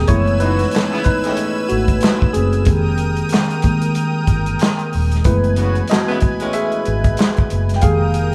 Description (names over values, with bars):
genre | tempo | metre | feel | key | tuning
R&B, neo-soul | 93 BPM | 4/4 | swing 60% on 16ths | unclear | A4 = 442 Hz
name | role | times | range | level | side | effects
tine electric piano | accompaniment | 0.0-8.3 s | Eb3 to G5 | -21 LUFS | equal | phaser
lush unison pad | sustained chords | 0.0-8.3 s | Bb4 to E6 | -29 LUFS | equal | chorus
vintage muted fingered electric bass | bass | 0.0-8.3 s | Eb1 to G#1 | -21 LUFS | equal | none
warm soul drum kit | drums | 0.1-8.3 s | handclaps, hi-hat, kick drum, snare drum | -20 LUFS | equal | none
warm horn section | stabs | 0.4-1.7, 5.6-6.8 s | A2 to F#4 | -27 LUFS | equal | none
room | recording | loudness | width
moderate large studio reverb, RT60 0.9 s | band playing live in one room | -17 LUFS | mono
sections
0.0-8.3 A section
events
tine electric piano solo 0.0-8.3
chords
0.1 F#m11; 2.7 Fm11; 5.2 F#m11; 7.8 Fm11